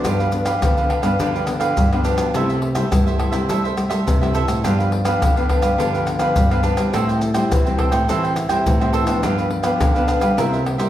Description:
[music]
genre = samba and choro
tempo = 104 BPM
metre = 4/4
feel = straight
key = unclear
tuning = A4 = 440 Hz
[part]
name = cavaquinho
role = accompaniment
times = 0.0-10.9 s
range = D4 to G5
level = -22 LUFS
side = right 3 dB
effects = none
[part]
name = nylon-string guitar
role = accompaniment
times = 0.0-10.9 s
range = G2 to E4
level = -23 LUFS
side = left 3 dB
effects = none
[part]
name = nylon-string guitar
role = bass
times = 0.0-10.9 s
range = G2 to G3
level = -22 LUFS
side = equal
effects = none
[part]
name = maracas, surdo, pandeiro and tamborim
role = percussion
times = 0.0-10.9 s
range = none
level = -21 LUFS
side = equal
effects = none
[sound]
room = wet recital hall reverb, RT60 1.5 s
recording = recorded in a church or concert hall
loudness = -16 LUFS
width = side -12 dB against mid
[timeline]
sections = 0.0-10.9 A section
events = none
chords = 0.0 G7; 2.3 C6; 4.6 G7; 6.9 Am7; 9.2 G7; 10.4 C7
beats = | 0.04 0.62 1.19 1.77 | 2.34 2.92 3.49 4.07 | 4.64 5.21 5.79 6.36 | 6.94 7.51 8.09 8.66 | 9.23 9.81 10.38

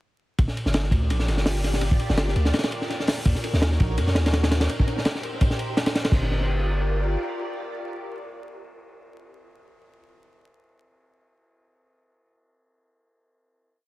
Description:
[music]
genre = drum and bass, jungle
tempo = 167 BPM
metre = 4/4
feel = swing 54% on 16ths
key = G minor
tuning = A4 = 439 Hz
[part]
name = soft string machine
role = sustained chords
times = 0.7-9.3 s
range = Eb4 to D5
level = -32 LUFS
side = equal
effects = phaser, ensemble chorus
[part]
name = long sustained 808-style bass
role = bass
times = 0.4-7.2 s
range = G1 to Gb2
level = -23 LUFS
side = equal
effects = none
[part]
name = crunchy breakbeat drum kit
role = drums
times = 0.4-6.2 s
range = crash cymbal, hi-hat, kick drum, ride cymbal, snare drum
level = -23 LUFS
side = equal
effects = tape echo
[sound]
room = small room ambience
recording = echo-heavy mix, vinyl crackle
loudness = -21 LUFS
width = side -18 dB against mid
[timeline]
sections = 0.4-6.1 drop; 6.1-9.0 final chord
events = drop 0.4-6.1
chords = 0.4 Gm7; 3.3 Ebm7; 4.7 Cm7; 6.1 Gm7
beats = | 0.38 0.74 1.10 1.46 | 1.82 2.18 2.54 2.90 | 3.26 3.62 3.98 4.33 | 4.69 5.05 5.41 5.77 | 6.13 6.49 6.85 7.21 | 7.57 7.93 8.29 8.65

